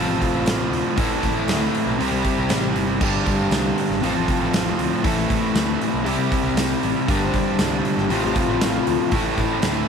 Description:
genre	classic rock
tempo	118 BPM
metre	4/4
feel	straight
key	C major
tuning	A4 = 440 Hz
part	cranked stack guitar	riff	0.0-9.9 s	G2 to A4	-23 LUFS	right 11 dB	overdrive
part	overdriven electric guitar	riff	0.0-9.9 s	F2 to C4	-23 LUFS	left 10 dB	harmonic tremolo
part	fuzz picked electric bass	bass	0.0-9.8 s	G1 to A2	-28 LUFS	equal	overdrive
part	huge arena drum kit	drums	0.2-9.8 s	crash cymbal, hi-hat, kick drum, snare drum	-25 LUFS	right 1 dB	none
part	tambourine	percussion	0.5-9.7 s	none	-38 LUFS	left 11 dB	none
part	clean lap steel guitar	second line	7.1-9.1 s	F4 to C5	-27 LUFS	left 12 dB	none
room	light reverb, small room ambience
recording	1960s-style stereo with parts hard left and right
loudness	-18 LUFS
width	side -6 dB against mid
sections	0.0-9.9 A section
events	none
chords	0.0 F/A; 1.0 Am; 2.0 C; 3.0 Gsus4; 4.0 F/A; 5.1 Am; 6.1 C; 7.1 Gsus4; 8.1 F/A; 9.1 Am

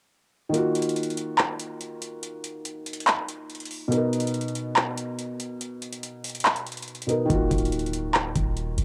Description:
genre	hip hop, trap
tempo	142 BPM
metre	4/4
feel	half-time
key	Eb harmonic minor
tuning	A4 = 440 Hz
part	felt-muted upright piano	accompaniment	0.5-8.8 s	B2 to A#4	-30 LUFS	equal	cassette tape
part	booming analog drum machine	drums	0.5-8.8 s	handclaps, hi-hat, kick drum	-28 LUFS	equal	overdrive, cassette tape
part	clean 808-style bass	bass	7.3-8.8 s	D1 to Eb1	-31 LUFS	equal	none
room	light reverb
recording	home recording on cassette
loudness	-27 LUFS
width	mono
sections	0.5-8.8 A section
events	kick muted 0.5-7.3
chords	0.5 Ebmadd9; 3.9 Bmaj7; 7.3 Ebmadd9

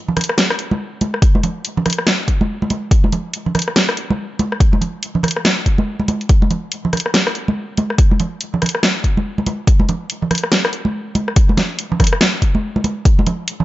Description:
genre	dubstep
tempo	142 BPM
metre	4/4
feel	swing 61% on 16ths, half-time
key	none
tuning	none
part	congas	percussion	0.1-13.6 s	none	-20 LUFS	right 2 dB	none
part	dubstep drum kit	drums	0.2-13.6 s	hi-hat, rim click, snare drum	-17 LUFS	left 1 dB	none
part	electronic kick drum	drums	1.2-13.2 s	none	-13 LUFS	equal	none
room	light reverb, digital ambience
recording	nothing above 7.7 kHz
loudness	-14 LUFS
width	side -16 dB against mid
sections	0.0-13.6 A section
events	none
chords	none

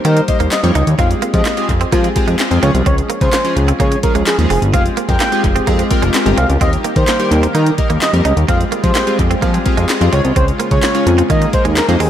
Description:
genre	dance-pop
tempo	128 BPM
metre	4/4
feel	straight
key	F minor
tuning	A4 = 439 Hz
part	expressive synth lead	melody	0.0-12.1 s	Ab4 to G5	-20 LUFS	equal	chorus, tape echo
part	chorused retro synth keys	accompaniment	0.0-12.1 s	F3 to Db5	-18 LUFS	left 1 dB	sidechain pumping, tape echo
part	direct-recorded clean electric guitar	riff	0.0-12.1 s	Ab3 to Eb4	-24 LUFS	right 7 dB	analog chorus, tape echo
part	fat analog bass	bass	0.0-12.1 s	F1 to F3	-14 LUFS	equal	sidechain pumping
part	smooth R&B drum kit	drums	0.0-12.1 s	handclaps, hi-hat, kick drum, snare drum	-18 LUFS	equal	tape echo
part	downlifter	sound effects	0.0-1.0 s	none	barely audible	none	none
part	group handclap	percussion	0.5-11.9 s	none	-28 LUFS	left 3 dB	none
part	soft supersaw	sustained chords	4.7-12.1 s	Db3 to Ab4	-25 LUFS	left 1 dB	none
room	light reverb, digital ambience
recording	echo-heavy mix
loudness	-11 LUFS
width	side -10 dB against mid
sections	0.0-12.1 A section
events	none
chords	0.0 Eb; 1.0 Fmadd9; 2.6 Db; 4.7 Fmadd9; 6.6 Eb; 8.5 Fmadd9; 10.1 Db; 11.3 Ebsus4

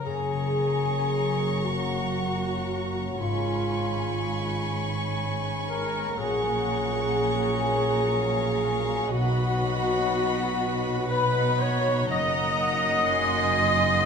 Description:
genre	classical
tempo	60 BPM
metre	3/4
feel	rubato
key	F# major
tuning	A4 = 439 Hz
part	warm chamber violin section	second line	0.0-14.1 s	D#5 to B5	-35 LUFS	left 3 dB	none
part	rich studio viola section	accompaniment	0.0-14.1 s	E#4 to Eb5	-32 LUFS	right 1 dB	none
part	concert harp	arpeggios	0.0-14.1 s	F#2 to A#5	-34 LUFS	left 7 dB	none
part	warm chamber violin section	melody	0.1-14.1 s	Bb5 to C#6	-35 LUFS	left 1 dB	none
part	mellow hollow large flute ensemble	second line	0.1-14.1 s	E#5 to Eb6	-31 LUFS	left 3 dB	none
part	warm clarinet	second line	0.1-14.1 s	E#4 to Eb5	-29 LUFS	right 1 dB	none
part	warm French horn section	sustained chords	0.1-14.1 s	F#3 to D#4	-34 LUFS	left 4 dB	none
part	dark chamber cello section	bass	0.1-14.1 s	F#2 to B2	-32 LUFS	right 3 dB	none
part	dark chamber double bass section	bass	0.1-14.1 s	F#1 to B1	-33 LUFS	right 6 dB	none
room	wet recital hall reverb, RT60 1.6 s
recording	minimal, uncompressed stereo recording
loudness	-23 LUFS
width	side -6 dB against mid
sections	0.1-14.1 A section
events	none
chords	0.1 F#; 3.2 C#7/G#; 6.2 F#/A#; 9.1 B; 12.1 Ebm/Gb

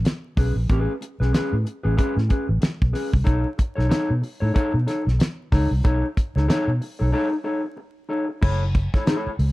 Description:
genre	funk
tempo	93 BPM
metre	4/4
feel	swing 60% on 16ths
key	unclear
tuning	A4 = 438 Hz
part	mellow electric guitar	accompaniment	0.0-9.4 s	C#4 to C#5	-25 LUFS	left 1 dB	plate reverb
part	vintage muted fingered electric bass	bass	0.0-9.5 s	F#1 to B2	-21 LUFS	equal	none
part	damped 70s drum kit	drums	0.1-9.5 s	crash cymbal, hi-hat, kick drum, snare drum	-21 LUFS	equal	none
room	light reverb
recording	dark, warm production, vinyl crackle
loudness	-20 LUFS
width	side -18 dB against mid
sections	0.0-8.4 A section; 8.4-9.5 B section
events	break 7.1-8.4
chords	0.0 Amaj9; 3.3 B9; 8.4 F#m7

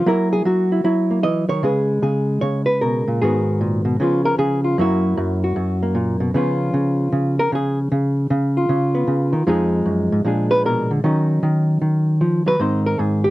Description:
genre	solo jazz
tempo	153 BPM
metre	4/4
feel	swing 65% on 8ths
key	Db mixolydian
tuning	A4 = 440 Hz
part	hollow-body jazz guitar	solo	0.0-13.3 s	F2 to Eb5	-16 LUFS	equal	none
room	light reverb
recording	dry, close 1970s-style studio recording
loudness	-16 LUFS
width	side -17 dB against mid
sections	0.0-13.3 A section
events	hollow-body jazz guitar solo 0.0-13.3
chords	0.1 Gb7; 1.6 Db5; 3.2 Abm7; 4.0 Db7; 4.8 Gb7; 6.3 Db7; 9.5 Fm7; 10.2 Bb7b9; 11.0 Ebm7; 12.6 Ab

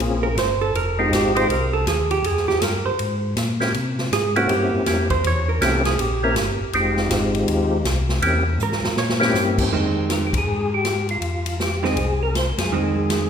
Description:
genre	soul jazz organ trio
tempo	160 BPM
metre	4/4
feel	swing 63% on 8ths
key	F minor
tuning	A4 = 436 Hz
part	percussive tonewheel organ	melody	0.0-13.3 s	Ab3 to C5	-22 LUFS	left 1 dB	slow rotary speaker, chorus vibrato
part	mellow tonewheel organ	bass	0.0-13.3 s	F1 to C3	-24 LUFS	left 1 dB	slow rotary speaker
part	swinging big-band drum kit	drums	0.0-13.2 s	crash cymbal, hi-hat, kick drum, ride cymbal, snare drum	-26 LUFS	equal	none
part	vintage hollow-body jazz guitar	accompaniment	0.2-13.3 s	Eb3 to Db5	-23 LUFS	right 4 dB	none
room	wet recital hall reverb, RT60 1.5 s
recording	recorded in a church or concert hall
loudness	-18 LUFS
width	side -7 dB against mid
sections	0.0-9.7 A section; 9.7-13.3 B section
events	hollow-body jazz guitar solo 0.0-9.7; drum fill 8.6-9.3; band accent 10.3, 12.5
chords	0.0 Bbm7; 0.7 Fm7; 3.7 C7b9; 6.7 Fm7; 8.2 C7b9; 9.7 Fm7

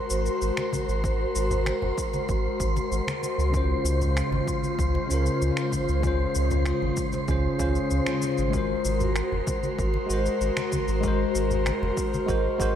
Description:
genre	sunset chillout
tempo	96 BPM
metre	4/4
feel	straight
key	Db major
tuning	A4 = 440 Hz
part	airy breathy pad	sustained chords	0.0-12.8 s	Db3 to C5	-29 LUFS	left 2 dB	chorus
part	wind-like tuned noise texture	texture	0.0-12.8 s	C5 to C6	-35 LUFS	right 2 dB	built-in reverb
part	warm sub bass	bass	0.1-12.8 s	Gb1 to Db2	-26 LUFS	equal	none
part	electronic cabasa and finger snaps	drums	0.1-12.7 s	none	-36 LUFS	left 1 dB	overdrive
part	congas	percussion	0.6-12.3 s	none	-36 LUFS	left 2 dB	none
part	electronic kick drum	drums	0.7-12.7 s	none	-32 LUFS	equal	none
part	tine electric piano	accompaniment	3.5-12.8 s	Db3 to C5	-28 LUFS	moving between left 6 dB and right 4 dB	auto-pan, diffuse ambient delay
room	moderate plate reverb, RT60 2.7 s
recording	dreamy mix soaked in reverb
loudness	-23 LUFS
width	side -10 dB against mid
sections	0.0-12.8 A section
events	none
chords	0.0 Ab9; 3.5 Dbmaj7; 8.5 Ab9

